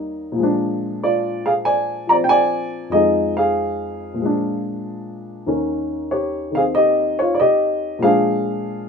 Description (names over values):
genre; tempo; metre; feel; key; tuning
solo jazz; 94 BPM; 4/4; swing 69% on 8ths; Bb mixolydian; A4 = 440 Hz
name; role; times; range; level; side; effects
dark upright piano; solo; 0.0-8.9 s; Eb2 to Bb5; -17 LUFS; equal; none
room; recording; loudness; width
light reverb; minimal, uncompressed stereo recording; -17 LUFS; side -6 dB against mid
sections
0.0-8.9 A section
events
none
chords
0.4 Bb7; 2.9 Fm7; 4.2 Bb7; 5.5 Eb7; 8.0 Bb7